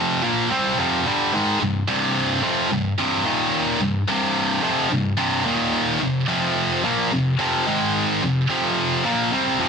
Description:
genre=rock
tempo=109 BPM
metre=4/4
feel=straight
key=unclear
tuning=A4 = 441 Hz
part: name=heavy high-gain guitar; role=solo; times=0.0-9.7 s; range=C2 to C4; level=-18 LUFS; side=equal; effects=distortion
room=light reverb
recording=heavily compressed radio sound, multiband compression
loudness=-18 LUFS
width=side -6 dB against mid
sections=0.0-9.7 A section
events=none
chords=0.0 F5; 1.6 C5; 3.3 Eb5; 3.8 C5; 5.5 Eb5; 6.0 F5; 7.7 Ab5; 8.2 F5

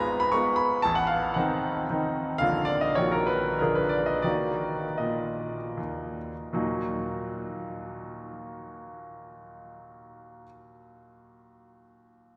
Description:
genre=classical, romantic triple-time dance for piano with dotted rhythms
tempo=74-122 BPM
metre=3/4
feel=rubato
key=Eb minor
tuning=A4 = 440 Hz
part: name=bright grand piano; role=solo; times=0.0-12.4 s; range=Ab1 to Db6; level=-29 LUFS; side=equal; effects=none
room=wet cathedral reverb, RT60 6.9 s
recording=none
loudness=-28 LUFS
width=mono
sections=0.0-6.5 A section; 6.5-11.0 B section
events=slowing down 1.6-6.5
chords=0.0 Fdim/Ab; 0.8 Adim7; 2.4 Bb; 3.0 Ebm/Bb; 3.6 Bb7; 4.2 Ebm

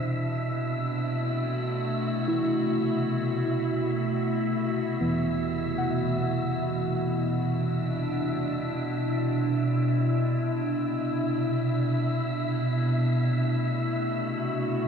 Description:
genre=ambient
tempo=free time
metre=none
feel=none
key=C lydian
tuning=A4 = 440 Hz
part: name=glassy FM pad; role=sustained chords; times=0.0-14.9 s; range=B2 to F#4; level=-26 LUFS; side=equal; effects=ensemble chorus, built-in reverb
part: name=muted felt-like synth keys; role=arpeggios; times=0.0-8.7 s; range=E3 to F#5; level=-32 LUFS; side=right 1 dB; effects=chorus, diffuse ambient delay, shimmer reverb
part: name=wind-like tuned noise texture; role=texture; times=0.0-14.9 s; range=E5 to E6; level=-35 LUFS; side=equal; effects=built-in reverb, shimmer reverb
room=wet huge ambient reverb, RT60 7.3 s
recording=dark, warm production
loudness=-25 LUFS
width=side -6 dB against mid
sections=0.0-6.6 A section; 6.6-14.9 B section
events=none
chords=0.3 D13; 6.6 Cmaj9; 12.8 D13

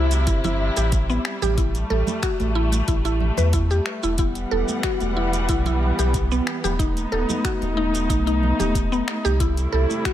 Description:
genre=organic downtempo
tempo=92 BPM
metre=4/4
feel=straight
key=E harmonic minor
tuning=A4 = 442 Hz
part: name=muted studio string section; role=sustained chords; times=0.0-10.1 s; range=C3 to F#5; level=-26 LUFS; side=left 1 dB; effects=sidechain pumping
part: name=mallet-like synth pluck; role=arpeggios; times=0.0-10.1 s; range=B3 to B4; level=-26 LUFS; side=equal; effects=chorus, ping-pong delay
part: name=warm sub bass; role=bass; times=0.0-9.9 s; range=D#1 to E2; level=-22 LUFS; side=equal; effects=sidechain pumping
part: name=deep house drum kit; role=drums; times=0.1-10.1 s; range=finger snaps, hi-hat, shaker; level=-31 LUFS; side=equal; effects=none
part: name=congas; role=percussion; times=0.1-10.0 s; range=none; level=-32 LUFS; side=right 5 dB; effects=none
part: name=electronic kick drum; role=drums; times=0.3-10.1 s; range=none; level=-24 LUFS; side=equal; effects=none
room=light reverb, digital ambience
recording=none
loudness=-19 LUFS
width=side -12 dB against mid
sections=0.0-10.1 A section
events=none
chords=0.0 C6; 1.6 A5; 4.2 Emadd9; 6.8 B7b13/D#; 9.4 C6

